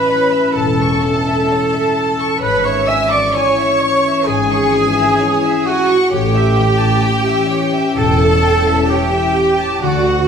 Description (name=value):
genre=cinematic, emotional film score for orchestra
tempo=65 BPM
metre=4/4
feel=rubato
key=A major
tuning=A4 = 439 Hz
part: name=warm studio violin section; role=melody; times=0.0-10.3 s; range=C#5 to C#6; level=-24 LUFS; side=left 2 dB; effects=none
part: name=bright flute section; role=second line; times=0.0-10.3 s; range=F#5 to E6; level=-23 LUFS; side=left 1 dB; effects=none
part: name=clear studio violin section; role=second line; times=0.0-10.3 s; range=F#5 to E6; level=-26 LUFS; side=left 2 dB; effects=none
part: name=mellow oboe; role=second line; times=0.0-10.3 s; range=F#4 to E5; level=-22 LUFS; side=right 2 dB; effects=none
part: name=dark studio viola section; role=accompaniment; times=0.0-10.3 s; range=F#4 to E5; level=-21 LUFS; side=right 3 dB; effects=none
part: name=mellow French horn section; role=sustained chords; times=0.0-10.3 s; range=E3 to D4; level=-21 LUFS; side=left 4 dB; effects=none
part: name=concert harp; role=arpeggios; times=0.0-10.3 s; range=G#2 to C#5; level=-23 LUFS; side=left 10 dB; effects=none
part: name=warm studio cello section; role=bass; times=0.0-10.3 s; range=F#4 to E5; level=-18 LUFS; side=right 1 dB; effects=none
part: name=rich studio double bass section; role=bass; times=0.6-10.3 s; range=E1 to D2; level=-20 LUFS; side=right 3 dB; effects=none
room=wet recital hall reverb, RT60 1.7 s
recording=none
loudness=-12 LUFS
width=side -7 dB against mid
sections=0.0-10.3 A section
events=none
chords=0.0 A; 2.4 C#m/G#; 6.1 A7